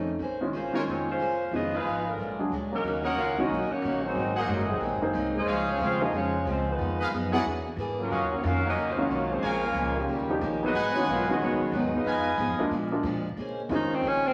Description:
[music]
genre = jazz, big band swing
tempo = 182 BPM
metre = 4/4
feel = swing 63% on 8ths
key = Eb minor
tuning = A4 = 440 Hz
[part]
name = picked steel-string acoustic guitar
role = accompaniment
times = 0.0-14.3 s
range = Ab2 to C5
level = -36 LUFS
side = equal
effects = none
[part]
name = warm baby grand piano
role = accompaniment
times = 0.0-14.2 s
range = Eb3 to F5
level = -33 LUFS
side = equal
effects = none
[part]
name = upright bass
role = bass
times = 0.0-14.3 s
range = F1 to Cb3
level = -39 LUFS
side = equal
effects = none
[part]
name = dark saxophone section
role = melody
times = 0.6-12.4 s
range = Eb3 to F5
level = -34 LUFS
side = equal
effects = none
[part]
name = bright trumpet section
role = stabs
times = 0.7-12.7 s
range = Gb4 to Ab5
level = -34 LUFS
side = equal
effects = none
[part]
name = bright trombone section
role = second line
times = 2.1-12.4 s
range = Bb2 to F4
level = -34 LUFS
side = equal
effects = none
[part]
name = clear trombone section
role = sustained chords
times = 13.4-14.3 s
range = Db3 to Db4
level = -41 LUFS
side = equal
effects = none
[part]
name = bright alto saxophone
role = melody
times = 13.8-14.3 s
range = C4 to Eb4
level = -27 LUFS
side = equal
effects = none
[sound]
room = wet large studio reverb, RT60 1.2 s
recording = vinyl crackle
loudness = -28 LUFS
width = mono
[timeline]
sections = 0.0-2.8 A section; 2.8-13.4 B section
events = none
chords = 0.2 Bbm9; 1.5 Fm7b5; 2.2 Bb7b13; 2.8 Ebm7; 4.2 Ab7; 5.5 Dbmaj7; 6.8 Fm7b5; 7.4 E7#11; 8.1 Ebm9; 9.4 Bbm7; 10.1 Eb7; 10.7 Abm7; 12.1 Fm7b5; 12.7 Bb7; 13.4 Bbm9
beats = | 0.20 0.53 0.86 1.19 | 1.52 1.85 2.18 2.51 | 2.84 3.17 3.50 3.83 | 4.16 4.48 4.81 5.14 | 5.47 5.80 6.13 6.46 | 6.79 7.12 7.45 7.78 | 8.11 8.44 8.77 9.10 | 9.43 9.75 10.08 10.41 | 10.74 11.07 11.40 11.73 | 12.06 12.39 12.72 13.04 | 13.37 13.70 14.03

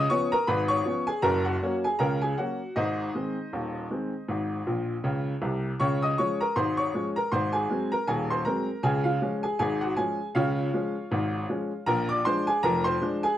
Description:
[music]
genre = ragtime piano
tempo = 79 BPM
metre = 2/4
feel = swing 56% on 16ths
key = Db major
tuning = A4 = 442 Hz
[part]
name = clear upright piano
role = solo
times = 0.0-13.4 s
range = Eb1 to Eb6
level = -25 LUFS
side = equal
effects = none
[sound]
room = moderate club reverb, RT60 0.6 s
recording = dark, warm production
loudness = -25 LUFS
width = side -12 dB against mid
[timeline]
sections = 0.0-13.4 A section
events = upright piano fill 4.7-5.8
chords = 0.0 Db7; 1.2 Gb; 2.8 Ab; 5.8 Db; 7.3 Ab7; 8.8 Db; 11.9 Bb7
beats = 0.48 | 1.23 1.99 | 2.75 3.52 | 4.28 5.04 | 5.80 6.56 | 7.32 8.08 | 8.84 9.60 | 10.36 11.12 | 11.87 12.63

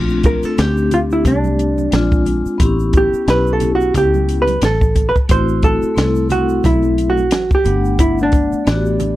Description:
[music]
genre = hip hop, jazz-hop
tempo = 89 BPM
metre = 4/4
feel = swing 57% on 16ths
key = unclear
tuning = A4 = 440 Hz
[part]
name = vibraphone with soft mallets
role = accompaniment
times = 0.0-9.2 s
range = Ab3 to F#5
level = -19 LUFS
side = left 3 dB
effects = none
[part]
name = fingered electric bass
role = bass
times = 0.0-9.2 s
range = G1 to D2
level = -19 LUFS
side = equal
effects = none
[part]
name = egg shaker and congas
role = percussion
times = 0.1-9.2 s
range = none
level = -30 LUFS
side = right 10 dB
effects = none
[part]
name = compact cocktail drum kit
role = drums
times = 0.2-9.2 s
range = hi-hat, kick drum, snare drum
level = -17 LUFS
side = equal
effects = none
[part]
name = hollow-body jazz guitar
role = melody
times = 0.3-9.2 s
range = D4 to C5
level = -17 LUFS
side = right 1 dB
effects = none
[sound]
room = small room reverb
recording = dry, close 1970s-style studio recording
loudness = -13 LUFS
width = side -15 dB against mid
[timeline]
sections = 0.0-9.2 A section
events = hollow-body jazz guitar solo 0.0-9.2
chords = 0.0 Bbmaj9; 1.9 Bb9; 2.6 A9; 5.3 Am69; 7.7 Gmaj9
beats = 0.58 1.25 1.92 | 2.60 3.27 3.95 4.62 | 5.29 5.97 6.64 7.32 | 7.99 8.67

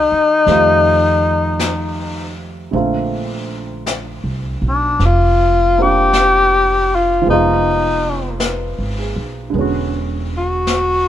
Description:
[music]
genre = jazz ballad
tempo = 53 BPM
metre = 4/4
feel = swing 69% on 8ths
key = unclear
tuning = A4 = 436 Hz
[part]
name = breathy tenor saxophone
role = melody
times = 0.0-11.1 s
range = D4 to G4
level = -14 LUFS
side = left 2 dB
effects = none
[part]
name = warm upright piano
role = accompaniment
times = 0.0-11.1 s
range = D3 to D5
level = -22 LUFS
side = right 3 dB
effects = none
[part]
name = upright bass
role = bass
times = 0.0-11.1 s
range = E1 to F2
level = -20 LUFS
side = right 1 dB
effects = none
[part]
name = vintage brush drum kit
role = drums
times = 0.5-11.1 s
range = brushed snare drum, hi-hat, snare drum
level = -27 LUFS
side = left 3 dB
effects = none
[sound]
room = light reverb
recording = minimal, uncompressed stereo recording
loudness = -13 LUFS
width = side -11 dB against mid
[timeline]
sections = 0.0-11.1 A section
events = none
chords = 0.5 F9; 2.7 A#maj9; 7.3 Fm7b5; 9.5 E13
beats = 0.46 1.59 | 2.73 3.86 5.00 6.13 | 7.27 8.40 9.54 10.68

